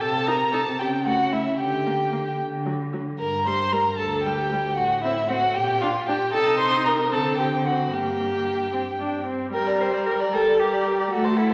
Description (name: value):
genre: quick classical-period movement for string quartet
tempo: 76 BPM (dotted quarters)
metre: 6/8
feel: straight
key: G minor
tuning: A4 = 439 Hz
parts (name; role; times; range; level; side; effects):
- dark violin; melody; 0.0-11.5 s; E5 to C6; -28 LUFS; equal; none
- warm violin; second line; 0.0-11.5 s; E4 to D5; -28 LUFS; equal; none
- warm cello; bass; 0.0-11.5 s; D2 to C5; -30 LUFS; equal; none
- warm viola; accompaniment; 0.3-11.5 s; F#3 to Eb4; -31 LUFS; equal; none
room: wet scoring stage reverb, RT60 1.8 s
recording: none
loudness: -23 LUFS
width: mono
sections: 0.0-9.5 A section; 9.5-11.5 A section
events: none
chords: 0.0 Cm6; 0.8 A/C#; 1.6 Gm/D; 2.4 D; 3.2 G5; 4.8 Am6; 5.6 Bb6; 6.3 Cm7; 7.1 D7; 7.9 Gm